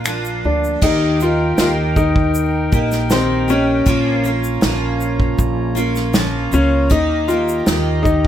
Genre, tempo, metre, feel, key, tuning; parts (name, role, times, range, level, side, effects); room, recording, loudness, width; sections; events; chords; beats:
acoustic pop; 79 BPM; 4/4; straight; Eb mixolydian; A4 = 440 Hz
warm upright piano; melody; 0.0-8.3 s; C4 to D5; -17 LUFS; left 2 dB
picked steel-string acoustic guitar; accompaniment; 0.0-8.3 s; Bb2 to G4; -21 LUFS; right 1 dB; double-tracked left and right
upright bass; bass; 0.0-8.3 s; Bb1 to Eb2; -20 LUFS; equal
unplugged drum kit; drums; 0.1-8.3 s; crash cymbal, finger snaps, kick drum, shaker, snare drum; -19 LUFS; equal
pedal harmonium; sustained chords; 0.8-8.3 s; Eb4 to Bb5; -26 LUFS; right 2 dB
light reverb; -14 LUFS; side -10 dB against mid
0.8-8.3 A section
0.0 Bb; 0.8 Eb; 3.9 Bbm; 6.9 Eb
0.07 | 0.83 1.59 2.35 3.11 | 3.87 4.63 5.39 6.15 | 6.91 7.67